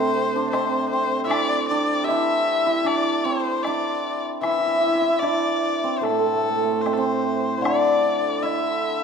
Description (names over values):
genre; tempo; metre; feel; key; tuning
chinese traditional, Chinese chamber ensemble; 76 BPM; 4/4; rubato; D shang mode; A4 = 440 Hz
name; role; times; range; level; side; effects
clear erhu; melody; 0.0-9.0 s; A4 to E5; -24 LUFS; left 3 dB; none
hammered dulcimer; second line; 0.0-9.0 s; A3 to G4; -24 LUFS; right 5 dB; none
hammered dulcimer; accompaniment; 0.0-9.0 s; A2 to E3; -26 LUFS; left 5 dB; none
woodblock; percussion; 0.5-8.6 s; none; -33 LUFS; left 3 dB; none
room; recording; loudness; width
moderate scoring stage reverb, RT60 1.6 s; minimal, uncompressed stereo recording; -20 LUFS; side -6 dB against mid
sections
0.0-9.0 A section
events
none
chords
none